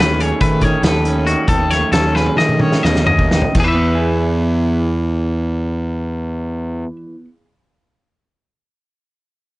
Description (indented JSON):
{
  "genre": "math rock and midwest emo",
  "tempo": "244-286 BPM (eighths)",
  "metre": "9/8",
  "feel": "straight",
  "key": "E major",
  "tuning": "A4 = 442 Hz",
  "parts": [
    { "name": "electric guitar through a small old amp", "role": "accompaniment", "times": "0.0-7.5 s", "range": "E2 to A4", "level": "-20 LUFS", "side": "right 2 dB", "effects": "none" },
    { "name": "twangy electric guitar", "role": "arpeggios", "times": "0.0-7.0 s", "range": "F#4 to E5", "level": "-20 LUFS", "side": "left 3 dB", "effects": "none" },
    { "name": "fuzz fingered electric bass", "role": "bass", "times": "0.0-6.8 s", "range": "D#2 to D#3", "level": "-18 LUFS", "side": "equal", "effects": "overdrive" },
    { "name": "loose indie drum kit", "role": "drums", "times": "0.0-3.7 s", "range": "crash cymbal, hi-hat, kick drum, snare drum, toms", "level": "-18 LUFS", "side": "equal", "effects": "none" }
  ],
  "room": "light reverb",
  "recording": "worn, warbling old tape, cassette tape, warbly pitch drift, nothing above 10.4 kHz",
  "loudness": "-14 LUFS",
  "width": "side -19 dB against mid",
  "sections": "0.0-3.6 A section; 3.6-8.0 B section",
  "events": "slowing down 0.0-3.6; drum fill 2.1-3.6",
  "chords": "0.0 B9/D#; 3.6 E"
}